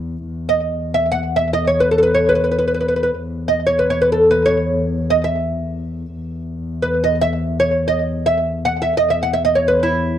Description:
Persian modal ensemble; free time; A4 = 440 Hz
muted double bass; drone; 0.0-10.2 s; E2; -23 LUFS; left 2 dB
oud; melody; 0.5-10.2 s; E4 to F#5; -16 LUFS; right 1 dB; slapback echo
light reverb; dry, close 1970s-style studio recording; -15 LUFS; side -10 dB against mid
0.3-10.2 A section

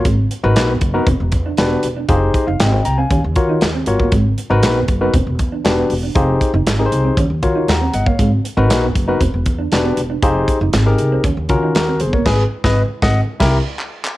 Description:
early-eighties boogie funk; 118 BPM; 4/4; straight; A4 = 443 Hz
barky tine electric piano; accompaniment; 0.0-13.6 s; Db4 to Bb5; -18 LUFS; left 2 dB; overdrive, cassette tape
mellow electric guitar; riff; 0.0-12.2 s; Ab3 to F4; -24 LUFS; right 4 dB; wide subtle chorus, cassette tape
upright bass; bass; 0.1-13.6 s; E1 to Eb3; -18 LUFS; equal
modern studio drum kit; drums; 0.1-14.2 s; crash cymbal, handclaps, hi-hat, kick drum, snare drum; -19 LUFS; equal; cassette tape
studio reverb; home recording on cassette; -13 LUFS; side -16 dB against mid
0.0-14.2 A section
band accent 12.3-14.2; drum fill 13.8-14.2
0.1 Abm9; 1.1 Em9; 2.1 Fm9; 3.1 Ebm9; 4.1 Abm9; 5.1 Em9; 6.2 Fm9; 7.2 Ebm9; 8.2 Abm9; 9.2 Em9; 10.2 Fm9; 11.2 Ebm9; 12.3 Abm7; 13.3 C7

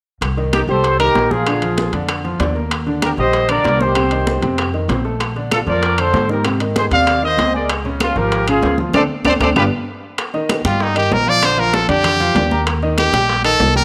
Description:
latin, salsa; 193 BPM; 4/4; straight; A4 = 440 Hz
upright bass; bass; 0.2-13.8 s; G1 to Ab2; -24 LUFS; equal
bongos; percussion; 0.2-13.8 s; -29 LUFS; equal
claves; percussion; 0.2-13.6 s; -29 LUFS; equal
congas; percussion; 0.2-13.8 s; -28 LUFS; equal
timbales; percussion; 0.2-13.8 s; -27 LUFS; equal
warm grand piano; accompaniment; 0.4-13.8 s; C3 to D6; -23 LUFS; equal
mellow trumpet section; melody; 0.5-9.6 s; Db4 to F5; -20 LUFS; equal
brilliant trumpet; melody; 10.7-13.8 s; Eb4 to D5; -18 LUFS; equal
moderate echo chamber reverb, RT60 1.9 s, small room ambience; -16 LUFS; mono
0.2-10.2 A section; 10.2-13.8 B section
band accent 8.9-10.2; drum fill 9.6-10.2; trumpet solo 10.2-13.8
0.2 Cm7; 1.5 Bb7; 2.7 Ebmaj7; 4.0 Cm; 4.6 F7; 5.2 Bbmaj7; 6.5 Ab; 7.7 Db6; 8.9 D5; 9.6 G; 10.2 Ebadd9; 11.4 Bb; 12.7 Eb

